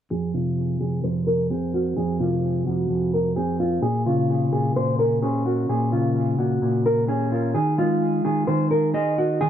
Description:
hip hop; 129 BPM; 4/4; half-time; F phrygian; A4 = 437 Hz
nylon-string guitar; melody; 0.1-9.5 s; F4 to C5; -24 LUFS; equal; low-pass filter, dub echo
mellow electric guitar; accompaniment; 0.1-9.5 s; F2 to Eb5; -22 LUFS; equal; low-pass filter
moderate echo chamber reverb, RT60 1.8 s, small room ambience; echo-heavy mix; -20 LUFS; side -10 dB against mid
0.1-9.5 A section
filter sweep 0.1-9.5
0.1 F5; 3.8 Bbm; 7.5 Ebsus4

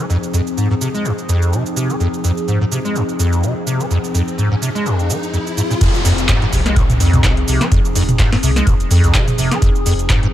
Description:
acid house; 126 BPM; 4/4; swing 56% on 16ths; F minor pentatonic; A4 = 438 Hz
warbly tape-like pad; sustained chords; 0.0-10.3 s; F3 to Ab4; -23 LUFS; left 2 dB; chorus, built-in reverb, phaser, sidechain pumping
acid bass, square; riff; 0.0-10.3 s; F2 to Ab3; -17 LUFS; equal; tube saturation, ensemble chorus, vintage 12-bit sampler grit, sidechain pumping
booming analog drum machine; drums; 0.1-10.3 s; crash cymbal, handclaps, hi-hat, shaker, snare drum, toms; -21 LUFS; right 1 dB
riser and downlifter; sound effects; 3.6-9.6 s; -26 LUFS; left 1 dB
round analog bass; bass; 5.8-10.2 s; Eb1 to F2; -19 LUFS; equal; tube saturation, sidechain pumping
dusty soul sampler-style drum kit; drums; 5.8-10.2 s; hi-hat, snare drum; -34 LUFS; equal
electronic kick drum; drums; 5.8-10.2 s; -16 LUFS; equal
light reverb, digital ambience; -14 LUFS; side -12 dB against mid
0.0-5.8 A section; 5.8-10.3 B section
riser 3.6-5.8; drop 5.8-10.3
0.0 Fm7

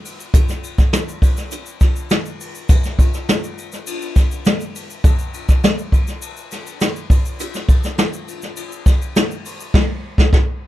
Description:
pop; 102 BPM; 4/4; straight
jazz brush drum kit; drums; 0.1-10.5 s; crash cymbal, hi-hat, kick drum, ride cymbal, snare drum; -15 LUFS; equal
tube shaker; percussion; 0.1-9.7 s; -35 LUFS; left 4 dB
little or no reverb; -15 LUFS; side -15 dB against mid
0.0-10.7 A section
band accent 9.7-10.7

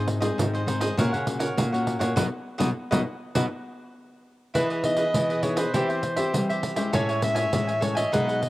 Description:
samba and choro; 101 BPM; 4/4; straight; E major; A4 = 440 Hz
cavaquinho; accompaniment; 0.0-8.5 s; D#4 to G#5; -30 LUFS; right 1 dB
nylon-string guitar; accompaniment; 0.0-8.5 s; G#2 to G#4; -30 LUFS; left 4 dB
nylon-string guitar; bass; 0.0-8.5 s; G#2 to G3; -29 LUFS; equal
pandeiro; percussion; 0.1-8.5 s; -28 LUFS; right 2 dB
warm soprano saxophone; melody; 4.5-8.5 s; B4 to E5; -27 LUFS; equal; cassette tape
light reverb, small room ambience; home recording on cassette; -22 LUFS; side -17 dB against mid
0.0-4.5 A section; 4.5-8.5 B section
band accent 2.2-4.5
0.0 G#; 1.0 F#/A#; 2.2 B; 4.5 Emaj7; 5.7 C/E; 6.9 Amaj7

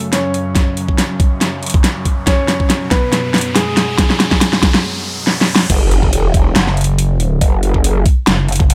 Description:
heavy wobble dubstep; 140 BPM; 4/4; swing 54% on 16ths, half-time; A4 = 440 Hz
dark concert grand piano; melody; 0.0-4.8 s; G#3 to C#5; -24 LUFS; equal; dub echo
evolving wavetable pad; sustained chords; 0.0-5.7 s; F#2 to F#3; -28 LUFS; equal; chorus, built-in reverb, sidechain pumping
riser and impact; sound effects; 1.4-7.4 s; -26 LUFS; equal
dubstep drum kit; drums; 0.1-8.7 s; crash cymbal, hi-hat, snare drum; -18 LUFS; equal
electronic kick drum; drums; 0.6-8.7 s; -16 LUFS; equal; overdrive
growl bass; bass; 5.7-8.0 s; E1 to F#1; -17 LUFS; equal; chorus, overdrive
pulsing pluck wobble bass; bass; 6.6-8.7 s; F#1; -17 LUFS; equal; chorus, overdrive
light reverb; -14 LUFS; mono
0.0-5.7 A section; 5.7-8.7 B section
build-up 0.0-5.7; drum fill 0.0-4.8, 5.3-5.7; riser 1.4-5.7; break 4.8-5.7; drop 5.7-8.7; impact 5.7-7.4
0.0 F#5

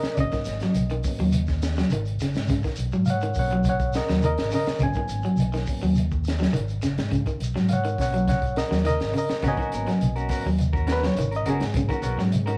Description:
afrobeat; 104 BPM; 4/4; straight; G# minor; A4 = 440 Hz
barky reed electric piano; accompaniment; 0.0-12.6 s; F#3 to G#5; -31 LUFS; equal; overdrive, fast tremolo
electric guitar at the edge of break-up; arpeggios; 0.0-12.6 s; C#3 to F#3; -29 LUFS; equal
fingered electric bass; bass; 0.0-12.5 s; F#1 to G#2; -29 LUFS; equal
crunchy breakbeat drum kit; drums; 0.0-12.6 s; hi-hat, kick drum, snare drum; -32 LUFS; equal
shekere; percussion; 0.0-12.6 s; -34 LUFS; equal
clean electric guitar; stabs; 9.4-12.6 s; B3 to A#4; -34 LUFS; equal
moderate club reverb, RT60 0.8 s; -24 LUFS; mono
0.0-12.6 A section
reed electric piano solo 0.0-12.6
0.0 G#m11

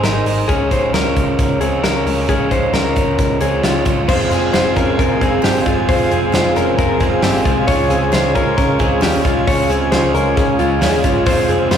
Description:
jangly indie pop; 134 BPM; 4/4; straight; F minor; A4 = 441 Hz
overdriven electric guitar; accompaniment; 0.0-11.8 s; Db3 to Db5; -19 LUFS; right 4 dB
direct-recorded clean electric guitar; arpeggios; 0.0-11.8 s; Ab3 to Db5; -18 LUFS; left 4 dB
vintage muted picked electric bass; bass; 0.0-11.8 s; F1 to Eb2; -22 LUFS; equal
modern studio drum kit; drums; 0.0-11.8 s; crash cymbal, hi-hat, kick drum, snare drum; -19 LUFS; equal
pipe organ, principal chorus; sustained chords; 4.1-11.8 s; F4 to Ab5; -21 LUFS; equal
group handclap; percussion; 4.5-11.8 s; barely audible
wet church reverb, RT60 3.4 s; rough rehearsal-room recording, warm saturation; -13 LUFS; side -8 dB against mid
0.0-4.1 A section; 4.1-11.8 B section
0.5 Db; 4.1 Fm; 7.7 Db; 11.3 Fm

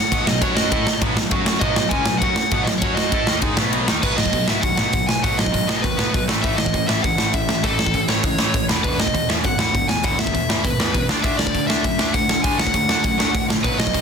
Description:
punk rock; 200 BPM; 4/4; straight; A4 = 438 Hz
biting lead guitar; melody; 0.0-14.0 s; A4 to G#5; -22 LUFS; equal; overdrive
dark baby grand piano; bass; 0.0-14.0 s; E1 to A2; -27 LUFS; left 1 dB
tight distorted guitar; riff; 0.1-14.0 s; E2 to A4; -23 LUFS; equal; distortion
big rock drum kit; drums; 0.1-14.0 s; crash cymbal, hi-hat, kick drum, ride cymbal, snare drum; -20 LUFS; right 1 dB
little or no reverb; dense, heavily limited modern master; -17 LUFS; side -6 dB against mid
0.0-4.0 A section; 4.0-14.0 B section
0.4 F#5; 0.7 B; 1.3 F#5; 1.6 B; 2.8 F#5; 3.1 B; 6.3 A; 8.7 E5; 11.1 D

